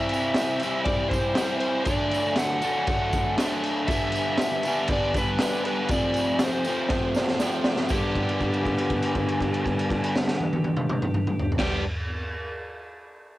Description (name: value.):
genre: garage rock duo or trio.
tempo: 120 BPM.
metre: 4/4.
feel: straight.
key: G mixolydian.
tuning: A4 = 440 Hz.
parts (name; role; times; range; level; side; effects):
overdriven slide guitar; melody; 0.0-11.8 s; G4 to F#5; -29 LUFS; equal; cassette tape.
overdriven electric guitar; riff; 0.0-11.8 s; F2 to E4; -27 LUFS; equal; cassette tape.
raw garage drum kit; drums; 0.1-11.7 s; crash cymbal, kick drum, snare drum, toms; -26 LUFS; equal; cassette tape.
tambourine; percussion; 0.1-8.1 s; none; -44 LUFS; right 3 dB; none.
room: light reverb.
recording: home recording on cassette.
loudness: -22 LUFS.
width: side -16 dB against mid.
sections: 0.0-7.9 A section; 7.9-11.9 B section.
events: drum fill 6.9-7.9; held note 7.9-11.6.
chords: 0.0 C; 1.9 D; 3.9 G; 5.9 F; 7.9 G.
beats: 0.37 0.87 1.38 | 1.88 2.38 2.88 3.39 | 3.89 4.39 4.89 5.39 | 5.89 6.39 6.90 7.40 | 7.90 8.40 8.90 9.39 | 9.89 10.39 10.89 11.39.